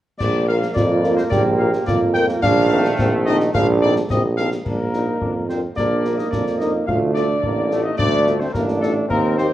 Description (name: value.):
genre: military-style march for wind band.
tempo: 108 BPM.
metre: 2/4.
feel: straight.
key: Bb major.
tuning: A4 = 439 Hz.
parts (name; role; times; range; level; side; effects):
mellow trumpet section; melody; 0.2-9.5 s; A4 to G5; -24 LUFS; left 2 dB; none.
clear trombone section; sustained chords; 0.2-9.5 s; Eb3 to Eb4; -26 LUFS; right 2 dB; none.
clear tuba; bass; 0.2-9.5 s; A1 to F2; -20 LUFS; right 1 dB; none.
concert snare drum, clash cymbals and concert bass drum; drums; 0.2-9.5 s; none; -26 LUFS; left 1 dB; none.
mellow French horn section; accompaniment; 0.5-9.5 s; Bb3 to Bb4; -26 LUFS; left 2 dB; none.
warm euphonium; second line; 0.8-9.5 s; A3 to G4; -23 LUFS; right 3 dB; none.
room: moderate large studio reverb, RT60 1.0 s.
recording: worn, warbling old tape, cassette tape, warbly pitch drift.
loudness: -16 LUFS.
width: side -13 dB against mid.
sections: 0.2-4.7 A section; 4.7-9.5 B section.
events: none.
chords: 0.2 Bb5; 2.4 F7/Bb; 4.7 Bb; 6.9 Dm.